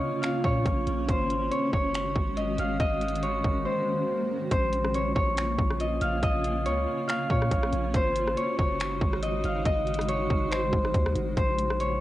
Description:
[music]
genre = hip hop, atmospheric cloud-rap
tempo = 140 BPM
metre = 4/4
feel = half-time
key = Bb minor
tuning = A4 = 440 Hz
[part]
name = Celtic harp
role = melody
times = 0.0-12.0 s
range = C5 to F5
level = -28 LUFS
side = left 1 dB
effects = low-pass filter, tape echo
[part]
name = granular cloud pad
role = sustained chords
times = 0.0-12.0 s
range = Db3 to Gb4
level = -32 LUFS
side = equal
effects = built-in reverb, cassette tape
[part]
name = trap drum kit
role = drums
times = 0.2-11.9 s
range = finger snaps, hi-hat, kick drum, rim click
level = -29 LUFS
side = equal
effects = overdrive, cassette tape
[part]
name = long sustained 808-style bass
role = bass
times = 0.4-12.0 s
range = Gb1 to Bb2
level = -31 LUFS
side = equal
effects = none
[part]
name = swell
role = sound effects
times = 3.5-4.5 s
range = none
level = -40 LUFS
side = equal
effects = none
[sound]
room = light reverb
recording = home recording on cassette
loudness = -24 LUFS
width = side -15 dB against mid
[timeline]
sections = 0.0-4.5 A section; 4.5-12.0 B section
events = swell 3.5-4.5; drums muted 3.7-4.5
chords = 0.0 Bbm; 1.1 Ab7sus4; 4.5 Bbm; 7.9 Ab7sus4; 11.4 Bbmadd9

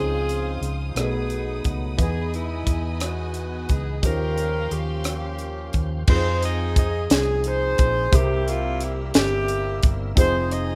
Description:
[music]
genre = slow gospel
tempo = 59 BPM (dotted quarters)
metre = 6/8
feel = straight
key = unclear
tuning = A4 = 440 Hz
[part]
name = warm saxophone section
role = melody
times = 0.0-10.8 s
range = G#3 to Eb5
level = -28 LUFS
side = equal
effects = slapback echo
[part]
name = warm grand piano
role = accompaniment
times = 0.0-10.8 s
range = B2 to E5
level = -34 LUFS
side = equal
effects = none
[part]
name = tonewheel organ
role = sustained chords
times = 0.0-10.8 s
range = Db3 to E5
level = -40 LUFS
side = equal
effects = none
[part]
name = warm studio string section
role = sustained chords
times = 0.0-6.1 s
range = D#5 to Eb6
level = -40 LUFS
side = equal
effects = none
[part]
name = hollow-body short-scale fingered electric bass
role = bass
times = 0.0-10.8 s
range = F1 to F2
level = -29 LUFS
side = equal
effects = none
[part]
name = tight funk drum kit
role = drums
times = 0.3-10.7 s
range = crash cymbal, hi-hat, kick drum, rim click, snare drum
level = -23 LUFS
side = equal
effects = none
[sound]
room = light reverb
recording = rough home demo mix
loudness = -23 LUFS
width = mono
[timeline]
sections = 0.0-6.1 A section; 6.1-10.8 B section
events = none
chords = 0.0 Dbmaj9; 1.0 B7; 2.0 Emaj7; 4.0 Eb13; 6.1 Fm7; 8.1 C7; 10.2 Fm7

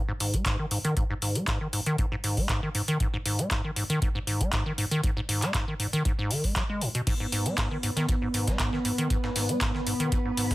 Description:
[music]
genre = acid house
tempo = 118 BPM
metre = 4/4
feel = straight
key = G# minor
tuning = A4 = 438 Hz
[part]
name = acid bass, square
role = riff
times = 0.0-10.5 s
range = G#2 to G#3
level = -29 LUFS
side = equal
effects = tube saturation, analog delay
[part]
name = booming analog drum machine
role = drums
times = 0.2-10.5 s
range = crash cymbal, handclaps, hi-hat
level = -31 LUFS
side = equal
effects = none
[part]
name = electronic kick drum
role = drums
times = 0.3-10.5 s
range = none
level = -29 LUFS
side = equal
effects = none
[part]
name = string machine, full ensemble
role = sustained chords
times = 7.1-10.5 s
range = B3 to B4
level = -31 LUFS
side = right 1 dB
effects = phaser, ensemble chorus, sidechain pumping
[part]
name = breakbeat sampler-style drum kit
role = drums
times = 7.1-10.5 s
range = hi-hat, snare drum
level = -39 LUFS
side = equal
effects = sidechain pumping on hats, high-pass filter on hats, high-pass filter on snare, high-pass filter on room
[sound]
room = moderate studio ambience, RT60 0.5 s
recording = heavily compressed radio sound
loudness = -25 LUFS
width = side -18 dB against mid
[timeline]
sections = 0.0-10.5 A section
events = filter sweep on acid bass 0.0-10.5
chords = 0.0 G#m

